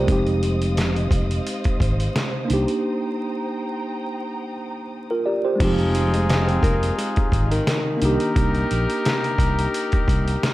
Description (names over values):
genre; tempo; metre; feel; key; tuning
hip hop, boom-bap hip-hop; 87 BPM; 4/4; swing 54% on 16ths; F dorian; A4 = 439 Hz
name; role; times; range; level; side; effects
mellow tine electric piano; accompaniment; 0.0-10.5 s; Ab3 to D5; -25 LUFS; right 1 dB; medium stereo tremolo, high-pass filter, low-pass filter
warm studio string section; sustained chords; 0.0-5.6 s; C5 to Eb6; -32 LUFS; right 1 dB; high-pass filter, low-pass filter
fretless electric bass; bass; 0.0-10.3 s; F1 to C2; -22 LUFS; equal; none
trip hop sampler-style drum kit; drums; 0.1-10.5 s; crash cymbal, hi-hat, kick drum, snare drum; -23 LUFS; equal; none
flamenco guitar; melody; 5.6-8.3 s; Eb3 to C4; -27 LUFS; left 1 dB; high-pass filter, low-pass filter
clear trumpet section; stabs; 5.6-10.5 s; Eb4 to Bb4; -26 LUFS; left 2 dB; high-pass filter, low-pass filter, digital delay
room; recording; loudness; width
little or no reverb; vinyl crackle; -19 LUFS; side -17 dB against mid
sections
0.0-5.6 A section; 5.6-10.5 B section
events
break 2.8-5.6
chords
0.1 Fm7; 2.5 Cm7; 5.6 Fm7; 8.0 Cm7